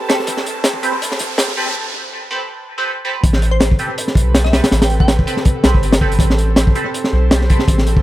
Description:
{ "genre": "drum and bass, jungle", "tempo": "162 BPM", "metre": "4/4", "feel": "swing 54% on 16ths", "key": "A minor", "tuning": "A4 = 440 Hz", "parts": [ { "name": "airy breathy pad", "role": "sustained chords", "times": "0.0-8.0 s", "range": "C4 to C5", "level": "-26 LUFS", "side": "equal", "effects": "chorus, vintage 12-bit sampler grit" }, { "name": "riser", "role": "sound effects", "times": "0.0-1.8 s", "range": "none", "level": "-25 LUFS", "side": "right 2 dB", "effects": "none" }, { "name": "backwards swelling texture", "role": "texture", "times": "0.0-1.8 s", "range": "A5", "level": "-33 LUFS", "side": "right 2 dB", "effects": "built-in reverb" }, { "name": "band-passed chord stab", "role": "stabs", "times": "0.1-7.6 s", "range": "C4 to B4", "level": "-23 LUFS", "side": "right 2 dB", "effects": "phaser, lush chorus, dub echo" }, { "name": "crunchy breakbeat drum kit", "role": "drums", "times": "0.1-8.0 s", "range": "hi-hat, kick drum, snare drum", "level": "-14 LUFS", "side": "equal", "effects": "high-pass filter on kick, high-pass filter on hats, high-pass filter on snare, high-pass filter on room, tape echo" }, { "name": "soft dub sub bass", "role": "bass", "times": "3.2-8.0 s", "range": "G1 to B1", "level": "-16 LUFS", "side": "equal", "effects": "none" }, { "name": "glassy wavetable pluck", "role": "melody", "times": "3.5-5.5 s", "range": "C5 to G5", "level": "-26 LUFS", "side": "left 1 dB", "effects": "chorus, tape echo" } ], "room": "light reverb, small room ambience", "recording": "echo-heavy mix, high-pass filter", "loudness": "-13 LUFS", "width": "side -15 dB against mid", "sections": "0.0-3.2 A section; 3.2-8.0 B section", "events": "build-up 0.0-3.2; riser 0.0-1.8; break 1.8-3.2; drop 3.2-8.0", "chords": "0.0 Am9" }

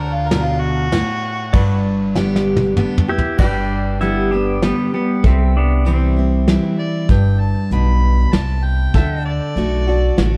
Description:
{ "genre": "honky-tonk and classic country", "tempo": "97 BPM", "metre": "3/4", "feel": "straight", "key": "G major", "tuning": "A4 = 438 Hz", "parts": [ { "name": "mellow harmonica", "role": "second line", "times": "0.0-1.8, 6.8-10.3 s", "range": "F4 to B5", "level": "-27 LUFS", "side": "equal", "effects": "none" }, { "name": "picked steel-string acoustic guitar", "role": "accompaniment", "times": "0.0-10.4 s", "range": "G2 to G4", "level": "-22 LUFS", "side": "equal", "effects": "none" }, { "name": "pedal steel guitar", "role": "sustained chords", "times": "0.0-10.4 s", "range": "G4 to B5", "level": "-34 LUFS", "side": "equal", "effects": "none" }, { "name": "upright bass", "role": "bass", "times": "0.0-10.4 s", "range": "G1 to D2", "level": "-21 LUFS", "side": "equal", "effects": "none" }, { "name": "soft brush drum kit", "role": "drums", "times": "0.3-10.3 s", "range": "crash cymbal, hi-hat, kick drum, ride cymbal, snare drum, toms", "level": "-20 LUFS", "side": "equal", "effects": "none" }, { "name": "pedal steel guitar", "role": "melody", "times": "3.1-6.8 s", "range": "G3 to G4", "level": "-23 LUFS", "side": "equal", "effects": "none" } ], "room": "light reverb", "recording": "heard from further back in the room", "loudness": "-17 LUFS", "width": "mono", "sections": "0.0-3.4 A section; 3.4-10.4 B section", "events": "drum fill 2.2-3.4", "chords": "0.0 D; 1.5 G; 5.2 C; 8.9 D" }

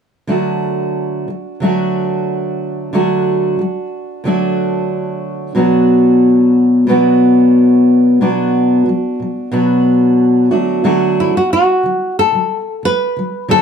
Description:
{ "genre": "pop", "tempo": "91 BPM", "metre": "4/4", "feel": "straight", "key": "D major", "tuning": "A4 = 440 Hz", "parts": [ { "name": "fingerpicked steel-string acoustic guitar", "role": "accompaniment", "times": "0.3-13.6 s", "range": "B2 to F#4", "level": "-12 LUFS", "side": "equal", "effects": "none" }, { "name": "nylon-string guitar", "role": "melody", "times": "11.2-13.6 s", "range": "E4 to B4", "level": "-13 LUFS", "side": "equal", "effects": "plate reverb" } ], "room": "moderate studio reverb, RT60 0.6 s", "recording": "dark, warm production", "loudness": "-11 LUFS", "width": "side -6 dB against mid", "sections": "0.3-10.9 A section; 10.9-13.6 B section", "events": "none", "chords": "0.3 D; 5.6 Bm; 10.5 D" }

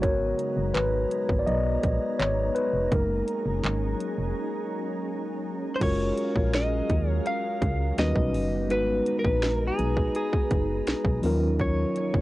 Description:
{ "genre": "contemporary R&B", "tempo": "83 BPM", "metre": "4/4", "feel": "straight", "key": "G# dorian", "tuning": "A4 = 440 Hz", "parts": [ { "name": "mellow tine electric piano", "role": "accompaniment", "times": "0.0-12.2 s", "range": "E#3 to D#5", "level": "-28 LUFS", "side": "equal", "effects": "slow stereo tremolo, cassette tape" }, { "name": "glassy FM pad", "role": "sustained chords", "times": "0.0-12.2 s", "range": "D#3 to A#5", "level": "-34 LUFS", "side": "equal", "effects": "ensemble chorus, built-in reverb, cassette tape" }, { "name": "solid FM bass", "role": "bass", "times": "0.0-12.2 s", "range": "E#1 to D#2", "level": "-28 LUFS", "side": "equal", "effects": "transformer saturation" }, { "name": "trap drum kit", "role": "drums", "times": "0.0-12.2 s", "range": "crash cymbal, handclaps, hi-hat, kick drum, snare drum", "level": "-28 LUFS", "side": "equal", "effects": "cassette tape" }, { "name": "direct-recorded clean electric guitar", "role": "melody", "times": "5.8-12.2 s", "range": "G#4 to E#5", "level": "-29 LUFS", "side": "equal", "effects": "cassette tape" } ], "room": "little or no reverb", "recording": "home recording on cassette", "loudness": "-24 LUFS", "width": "side -17 dB against mid", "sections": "0.0-5.8 A section; 5.8-12.2 B section", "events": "tine electric piano solo 0.0-5.8; break 4.4-5.8", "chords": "0.0 G#m7; 2.9 F#6; 5.8 F#maj9; 8.0 D#7alt; 8.7 G#m9; 11.2 D#m7" }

